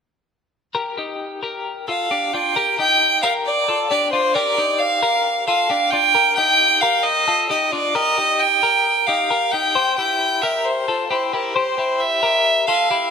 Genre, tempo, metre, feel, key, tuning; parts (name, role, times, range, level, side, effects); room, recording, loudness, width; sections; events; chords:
indie pop; 133 BPM; 4/4; straight; A4 = 440 Hz
twelve-string electric guitar; arpeggios; 0.7-13.1 s; D4 to C5; -23 LUFS; left 5 dB; tremolo
clear violin; melody; 1.9-13.1 s; Bb4 to G5; -16 LUFS; right 1 dB
moderate lush hall reverb, RT60 2.8 s; rough home demo mix, lossy compression artefacts; -16 LUFS; side -6 dB against mid
0.8-2.6 A section; 2.6-13.1 B section
0.8 Bb6; 9.8 C